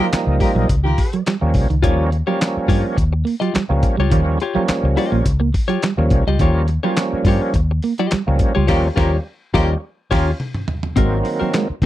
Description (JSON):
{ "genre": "funk", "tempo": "105 BPM", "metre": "4/4", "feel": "straight", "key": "Eb mixolydian", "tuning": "A4 = 440 Hz", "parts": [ { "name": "warm horn section", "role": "second line", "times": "0.0-1.2, 8.7-10.3 s", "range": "F4 to Bb4", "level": "-23 LUFS", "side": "left 2 dB", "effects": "none" }, { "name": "electric guitar at the edge of break-up", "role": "riff", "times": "0.0-11.6 s", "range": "Eb3 to Bb3", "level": "-22 LUFS", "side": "right 6 dB", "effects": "none" }, { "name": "overdriven tonewheel organ", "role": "stabs", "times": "0.0-11.7 s", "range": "Eb3 to F4", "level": "-21 LUFS", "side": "right 2 dB", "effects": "chorus vibrato, slow rotary speaker, slapback echo" }, { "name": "vintage muted fingered electric bass", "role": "bass", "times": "0.0-11.9 s", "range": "Ab1 to G2", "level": "-18 LUFS", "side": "equal", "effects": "none" }, { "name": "dusty soul sampler-style drum kit", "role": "drums", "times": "0.1-11.9 s", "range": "crash cymbal, handclaps, hi-hat, kick drum, snare drum, toms", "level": "-19 LUFS", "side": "equal", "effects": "none" }, { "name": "clean electric guitar", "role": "accompaniment", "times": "1.8-11.9 s", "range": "C4 to Eb5", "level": "-22 LUFS", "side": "left 7 dB", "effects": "none" } ], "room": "little or no reverb", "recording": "dry, close 1970s-style studio recording", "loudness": "-15 LUFS", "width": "side -14 dB against mid", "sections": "0.0-11.0 A section", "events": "break 0.0-1.8; band accent 0.0-1.8, 8.7-11.0; drum fill 9.8-11.0", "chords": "0.0 Eb9; 11.0 Ab9", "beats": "0.13 0.70 1.27 | 1.84 2.41 2.98 3.55 | 4.12 4.69 5.26 5.83 | 6.40 6.97 7.54 8.12 | 8.69 9.26 9.83 10.40 | 10.97 11.54" }